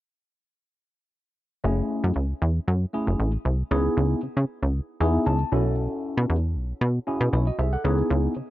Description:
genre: early-eighties boogie funk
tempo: 116 BPM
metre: 4/4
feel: straight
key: F# dorian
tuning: A4 = 440 Hz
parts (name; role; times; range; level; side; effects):
- tine electric piano; accompaniment; 1.6-8.3 s; A3 to A5; -26 LUFS; left 1 dB; phaser
- plucky analog bass; bass; 1.6-8.4 s; F#1 to C#3; -22 LUFS; equal; none
room: digital ambience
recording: nothing above 7.6 kHz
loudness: -22 LUFS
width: side -15 dB against mid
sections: 1.6-8.5 A section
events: tine electric piano fill 4.7-5.8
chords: 1.6 F#m9; 3.7 C#m7; 5.5 B9sus4; 7.8 C#m7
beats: | 1.64 2.16 2.68 3.19 | 3.71 4.23 4.75 5.26 | 5.78 6.30 6.81 7.33 | 7.85 8.37

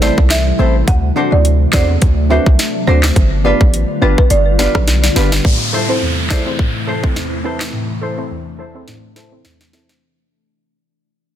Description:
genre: dancehall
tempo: 105 BPM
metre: 4/4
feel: swing 56% on 16ths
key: A minor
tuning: A4 = 439 Hz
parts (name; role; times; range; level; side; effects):
- folk marimba with medium mallets; melody; 0.0-4.7 s; B4 to F#5; -20 LUFS; right 2 dB; ping-pong delay
- soft round pluck; accompaniment; 0.0-9.9 s; E2 to D5; -21 LUFS; right 1 dB; chorus, sidechain pumping, low-pass filter
- glassy FM pad; sustained chords; 0.0-10.0 s; C3 to F4; -23 LUFS; left 2 dB; ensemble chorus, built-in reverb, sidechain pumping, low-pass filter
- nylon-string guitar; arpeggios; 0.0-9.9 s; D4 to C5; -23 LUFS; left 2 dB; low-pass filter
- hard-hitting 808-style bass; bass; 0.0-5.4 s; G1 to E2; -14 LUFS; equal; none
- island pop drum kit; drums; 0.0-10.0 s; handclaps, hi-hat, kick drum, rim click, snare drum; -15 LUFS; equal; overdrive
- downlifter; sound effects; 5.4-10.0 s; none; -23 LUFS; left 1 dB; none
room: little or no reverb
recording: dense, heavily limited modern master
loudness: -11 LUFS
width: side -10 dB against mid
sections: 0.0-5.4 A section; 5.4-10.0 B section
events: drum fill 4.9-5.4, 8.9-10.0; fade-out 5.4-10.0; filter sweep 5.4-10.0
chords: 0.0 Am; 0.9 D7; 3.2 G7; 5.4 Am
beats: 0.30 | 0.88 1.45 2.02 2.59 | 3.16 3.73 4.30 4.88 | 5.45 6.02 6.59 7.16 | 7.73 8.30 8.88 9.45

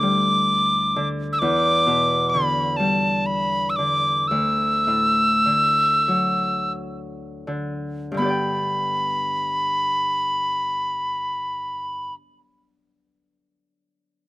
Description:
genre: celtic folk, Celtic slow air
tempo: 26-45 BPM (dotted quarters)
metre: 6/8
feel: rubato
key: G major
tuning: A4 = 439 Hz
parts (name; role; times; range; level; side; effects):
- tin whistle; melody; 0.0-12.1 s; A5 to E6; -20 LUFS; equal; none
- Celtic harp; accompaniment; 0.0-12.3 s; D2 to G5; -25 LUFS; left 1 dB; slapback echo
room: light reverb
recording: recorded outdoors, with no room sound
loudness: -19 LUFS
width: side -18 dB against mid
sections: 0.0-8.2 A section; 8.2-12.5 B section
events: slowing down 1.4-8.2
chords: 0.0 Dsus4; 1.4 Em7; 4.3 Dadd9; 8.2 G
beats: 0.02 | 1.40 2.79 | 4.30 6.07 | 8.18 10.35

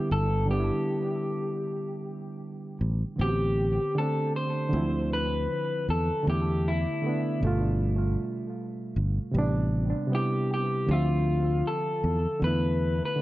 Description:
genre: lo-fi hip hop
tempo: 78 BPM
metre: 4/4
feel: swing 61% on 16ths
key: A minor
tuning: A4 = 440 Hz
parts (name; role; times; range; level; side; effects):
- electric guitar through a small old amp; melody; 0.0-13.2 s; E4 to C5; -30 LUFS; left 1 dB; low-pass filter, analog delay
- barky reed electric piano; accompaniment; 0.0-13.2 s; B2 to E5; -29 LUFS; right 1 dB; low-pass filter, analog delay
- fingered electric bass; bass; 0.1-13.0 s; G1 to E2; -27 LUFS; equal; none
room: light reverb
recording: echo-heavy mix, cassette tape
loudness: -25 LUFS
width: side -16 dB against mid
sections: 0.0-3.2 A section; 3.2-13.2 B section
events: none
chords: 0.0 Em7/G; 3.2 Am11; 4.7 Dm9; 6.3 E7sus4; 7.4 G9; 9.3 Am11; 10.9 Dm9; 12.4 E7sus4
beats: | 0.12 0.89 1.65 2.42 | 3.19 3.96 4.73 5.50 | 6.27 7.04 7.81 8.58 | 9.35 10.12 10.88 11.65 | 12.42 13.19

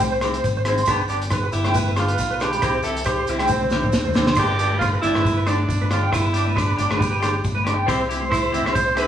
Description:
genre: highlife guitar band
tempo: 137 BPM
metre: 4/4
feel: swing 55% on 16ths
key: G mixolydian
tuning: A4 = 440 Hz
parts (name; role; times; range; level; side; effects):
- electric guitar through a small old amp; arpeggios; 0.0-9.1 s; B4 to C6; -24 LUFS; right 2 dB; tremolo
- fingered electric bass; bass; 0.0-9.1 s; G1 to D2; -25 LUFS; left 1 dB; none
- cloth-damped thuddy drum kit; drums; 0.0-9.1 s; crash cymbal, hi-hat, kick drum, rim click, snare drum, toms; -24 LUFS; equal; none
- congas; percussion; 0.0-9.1 s; none; -33 LUFS; left 4 dB; none
- maracas; percussion; 0.1-9.1 s; none; -37 LUFS; right 2 dB; none
- clean electric guitar; accompaniment; 0.2-9.1 s; G3 to G4; -30 LUFS; left 2 dB; none
- agogo bells; percussion; 0.2-9.1 s; none; -32 LUFS; left 2 dB; none
- edgy alto saxophone; melody; 1.5-9.1 s; C4 to C5; -24 LUFS; right 2 dB; none
room: wet large studio reverb, RT60 1.2 s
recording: band playing live in one room, small room ambience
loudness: -18 LUFS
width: side -10 dB against mid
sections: 0.0-4.4 A section; 4.4-9.1 B section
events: drum fill 3.5-4.4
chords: 0.0 C; 0.9 G; 2.6 C; 4.4 G; 7.9 C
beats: 0.00 0.44 | 0.87 1.31 1.75 2.19 | 2.62 3.06 3.50 3.94 | 4.37 4.81 5.25 5.68 | 6.12 6.56 7.00 7.43 | 7.87 8.31 8.75

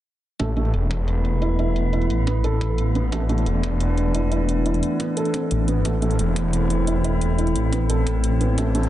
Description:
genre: dark technical drum and bass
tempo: 176 BPM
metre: 4/4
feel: straight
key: A minor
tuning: A4 = 441 Hz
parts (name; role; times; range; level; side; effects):
- metallic inharmonic drone; sustained chords; 0.8-8.9 s; E3 to A4; -24 LUFS; equal; chorus, built-in reverb, sidechain pumping
- felt-muted upright piano; arpeggios; 0.4-8.9 s; A3 to A4; -28 LUFS; right 2 dB; sidechain pumping, low-pass filter, analog delay
- snarling distorted saw bass; bass; 0.4-8.9 s; E1 to A1; -21 LUFS; equal; distortion, overdrive
- electronic hi-hat; drums; 0.4-8.9 s; none; -34 LUFS; equal; low-pass filter on hats, low-pass filter on room
- electronic kick drum; drums; 0.4-8.6 s; none; -36 LUFS; equal; high-pass filter on kick, high-pass filter on room
- riser; sound effects; 8.7-8.9 s; none; -39 LUFS; left 3 dB; none
room: moderate lush hall reverb, RT60 1.9 s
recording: dreamy mix soaked in reverb, nothing above 10.6 kHz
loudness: -19 LUFS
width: side -13 dB against mid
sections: 0.4-8.9 A section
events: none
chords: 0.4 Amadd9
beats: | 0.40 0.74 1.08 1.42 | 1.76 2.10 2.44 2.78 | 3.12 3.46 3.81 4.15 | 4.49 4.83 5.17 5.51 | 5.85 6.19 6.53 6.87 | 7.21 7.55 7.90 8.24 | 8.58

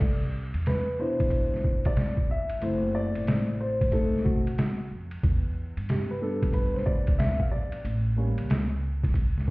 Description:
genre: hip hop, jazz-hop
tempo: 92 BPM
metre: 4/4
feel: swing 63% on 16ths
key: C major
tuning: A4 = 440 Hz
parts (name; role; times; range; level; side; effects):
- dark grand piano; accompaniment; 0.0-9.5 s; B2 to F5; -30 LUFS; left 1 dB; none
- upright bass; bass; 0.0-9.5 s; F#1 to G2; -30 LUFS; equal; none
- trip hop sampler-style drum kit; drums; 0.0-9.5 s; crash cymbal, hi-hat, kick drum, ride cymbal, snare drum; -26 LUFS; equal; none
room: light reverb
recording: heard muffled through a wall, stone room reverb, EQ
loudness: -24 LUFS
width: side -22 dB against mid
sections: 0.0-9.5 A section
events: grand piano solo 0.0-9.5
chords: 0.0 Cmaj9; 2.6 F#m7b5; 3.9 B7b9; 5.2 Em7; 7.8 A7b9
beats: | 0.02 0.67 1.32 1.98 | 2.63 3.28 3.93 4.58 | 5.24 5.89 6.54 7.19 | 7.85 8.50 9.15

